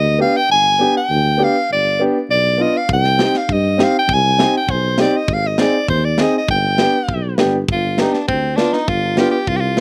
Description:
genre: klezmer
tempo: 100 BPM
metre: 2/4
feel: straight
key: G phrygian dominant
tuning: A4 = 440 Hz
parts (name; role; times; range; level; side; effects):
- breathy soprano saxophone; melody; 0.0-9.8 s; C4 to Ab5; -19 LUFS; equal; none
- breathy tuba; bass; 0.0-9.8 s; G1 to G2; -23 LUFS; equal; none
- clear upright piano; accompaniment; 0.2-9.8 s; B3 to Ab4; -21 LUFS; equal; none
- tight metal drum kit; drums; 2.9-9.8 s; kick drum, snare drum; -22 LUFS; equal; none
room: little or no reverb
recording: recorded outdoors, with no room sound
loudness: -16 LUFS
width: mono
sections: 0.0-7.7 A section; 7.7-9.8 B section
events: none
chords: 0.5 G; 2.9 Cm; 5.3 Ab; 6.5 G

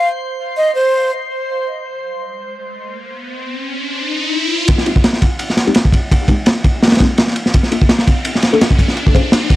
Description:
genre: drum and bass, jungle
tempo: 168 BPM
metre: 4/4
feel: swing 55% on 16ths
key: F minor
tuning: A4 = 440 Hz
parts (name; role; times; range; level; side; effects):
- breathy mellow silver concert flute; melody; 0.0-1.1 s; C5 to Eb5; -17 LUFS; right 1 dB; dub echo
- drifting glass-harmonics texture; texture; 0.0-4.7 s; C5 to C6; -27 LUFS; right 1 dB; chorus, built-in reverb
- riser; sound effects; 3.0-9.6 s; none; -22 LUFS; left 1 dB; none
- saturated sub bass; bass; 4.7-9.6 s; none; barely audible; none; none
- crunchy breakbeat drum kit; drums; 4.7-9.6 s; kick drum, ride cymbal, snare drum; -11 LUFS; equal; none
- deep mellow chord stab; stabs; 4.9-9.2 s; Ab3 to C5; -20 LUFS; left 3 dB; lush chorus, dub echo
room: little or no reverb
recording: dry, gritty hardware recording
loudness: -12 LUFS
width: side -16 dB against mid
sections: 0.0-4.7 A section; 4.7-9.6 B section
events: riser 3.0-4.7, 4.7-9.6; build-up 4.7-9.6; filter sweep on synth stab 4.7-9.6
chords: 0.0 N.C.; 4.7 Fm9; 7.5 Gm9; 9.0 Bbm9

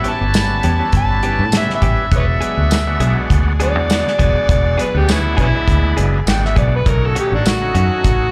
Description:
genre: straight-eighth soul blues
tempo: 101 BPM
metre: 4/4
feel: swing 55% on 16ths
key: E mixolydian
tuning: A4 = 440 Hz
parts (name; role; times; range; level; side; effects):
- overdriven harmonica; melody; 0.0-8.3 s; B3 to A5; -22 LUFS; equal; slapback echo
- overdriven tonewheel organ; accompaniment; 0.0-8.3 s; G3 to F#4; -26 LUFS; equal; slow rotary speaker, slapback echo
- brilliant horn section; sustained chords; 0.0-8.3 s; E4 to B5; -34 LUFS; equal; none
- direct-recorded clean electric guitar; stabs; 0.0-7.9 s; D#3 to G#4; -28 LUFS; equal; slapback echo, analog delay
- fingered electric bass; bass; 0.0-8.3 s; E1 to A2; -19 LUFS; equal; none
- warm soul drum kit; drums; 0.0-8.2 s; hi-hat, kick drum, snare drum, tambourine; -20 LUFS; equal; none
room: small room ambience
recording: live gig heard through the venue's PA, club reverb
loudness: -16 LUFS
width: mono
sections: 0.0-8.3 A section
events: harmonica solo 0.0-8.3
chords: 0.0 A9; 2.1 E9; 6.9 B9

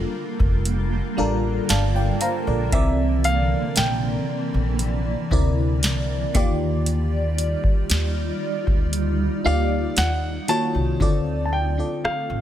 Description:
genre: contemporary R&B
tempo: 58 BPM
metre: 4/4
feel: straight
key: unclear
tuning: A4 = 439 Hz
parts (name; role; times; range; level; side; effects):
- warm grand piano; melody; 0.0-12.4 s; D5 to A5; -26 LUFS; left 1 dB; none
- FM electric piano with soft pad layer; accompaniment; 0.0-12.4 s; C3 to Bb5; -25 LUFS; equal; chorus, phaser
- granular cloud pad; sustained chords; 0.0-12.4 s; D3 to D5; -29 LUFS; right 1 dB; built-in reverb, sidechain pumping
- upright bass; bass; 0.4-12.4 s; F1 to Eb2; -23 LUFS; equal; none
- booming analog drum machine; drums; 0.4-12.3 s; hi-hat, kick drum, rim click, snare drum; -22 LUFS; equal; none
room: little or no reverb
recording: none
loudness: -19 LUFS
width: side -11 dB against mid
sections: 0.0-11.0 A section; 11.0-12.4 B section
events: FM electric piano fill 0.7-2.7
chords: 0.0 Gm7; 2.7 C9; 6.3 Ebmaj9; 10.0 Ebm7; 11.0 Dm7

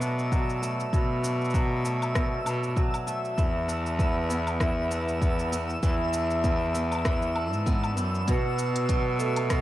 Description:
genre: folktronica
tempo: 98 BPM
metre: 4/4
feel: swing 56% on 16ths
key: B minor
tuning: A4 = 440 Hz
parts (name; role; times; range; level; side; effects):
- picked swing-style acoustic guitar; arpeggios; 0.0-9.6 s; B2 to D4; -30 LUFS; equal; low-pass filter, cassette tape
- bright cello; bass; 0.0-9.6 s; E2 to B2; -29 LUFS; equal; none
- organic electronic drum kit; drums; 0.0-9.6 s; hi-hat, rim click, shaker, woodblock; -35 LUFS; left 1 dB; studio reverb, cassette tape
- twinkling granular texture; texture; 0.0-9.6 s; E6; -37 LUFS; equal; built-in reverb, cassette tape
- electronic kick drum; drums; 0.3-9.6 s; none; -27 LUFS; equal; studio reverb, cassette tape
- vibraphone with soft mallets; second line; 8.3-9.6 s; A4 to B4; -31 LUFS; right 10 dB; cassette tape, analog delay
room: light reverb, small room ambience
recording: home recording on cassette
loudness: -24 LUFS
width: side -14 dB against mid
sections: 0.0-9.6 A section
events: none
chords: 0.0 Bm7; 3.4 E7(no3); 8.3 Bm7

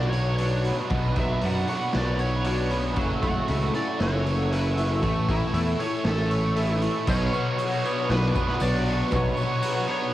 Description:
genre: rock, shoegaze and dream pop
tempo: 117 BPM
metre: 4/4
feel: straight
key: unclear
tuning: A4 = 439 Hz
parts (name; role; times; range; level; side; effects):
- smooth overdriven lead guitar; melody; 0.0-10.1 s; E4 to F#5; -32 LUFS; equal; cassette tape, analog delay
- hollow soft pad; sustained chords; 0.0-10.1 s; A4 to E6; -33 LUFS; left 1 dB; chorus, cassette tape
- direct-recorded clean electric guitar; arpeggios; 0.0-10.1 s; E3 to D4; -38 LUFS; left 5 dB; none
- biting overdriven guitar; riff; 0.0-10.1 s; B2 to C#5; -30 LUFS; right 6 dB; reverse reverb, cassette tape
- distorted electric guitar; riff; 0.0-10.1 s; F#2 to B3; -35 LUFS; equal; overdrive, cassette tape
- overdriven semi-hollow guitar; riff; 0.0-10.1 s; B2 to C#5; -32 LUFS; left 5 dB; ensemble chorus, cassette tape
- fuzz picked electric bass; bass; 0.0-9.3 s; F#1 to F#2; -26 LUFS; equal; overdrive
- raw garage drum kit; drums; 0.1-9.7 s; crash cymbal, hi-hat, kick drum, snare drum; -31 LUFS; equal; none
- tambourine; percussion; 7.1-9.7 s; none; -48 LUFS; left 8 dB; none
room: small room ambience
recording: home recording on cassette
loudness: -22 LUFS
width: side -14 dB against mid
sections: 0.0-7.1 A section; 7.1-10.1 B section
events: none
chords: 0.0 Bmadd9; 3.0 F#m7; 5.0 A; 7.1 Bmadd9

